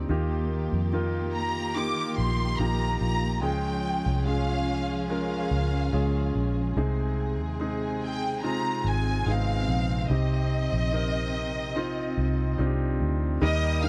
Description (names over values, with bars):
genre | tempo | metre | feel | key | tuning
pop ballad | 72 BPM | 4/4 | straight | unclear | A4 = 443 Hz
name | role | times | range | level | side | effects
clear concert grand piano | accompaniment | 0.0-13.9 s | C3 to Bb4 | -33 LUFS | equal | none
warm studio string section | sustained chords | 0.0-13.9 s | C3 to Bb4 | -37 LUFS | equal | none
vintage muted fingered electric bass | bass | 0.0-13.9 s | Ab1 to F2 | -30 LUFS | equal | none
warm studio violin section | melody | 1.3-13.9 s | Eb5 to F6 | -34 LUFS | equal | none
room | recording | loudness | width
little or no reverb | dry, close 1970s-style studio recording | -27 LUFS | mono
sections
0.0-13.4 A section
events
none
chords
0.1 Ebadd9; 3.4 Db; 6.8 Ab/C; 10.1 Cmadd9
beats
| 0.09 0.93 1.76 2.59 | 3.43 4.26 5.09 5.93 | 6.76 7.59 8.43 9.26 | 10.09 10.93 11.76 12.59 | 13.43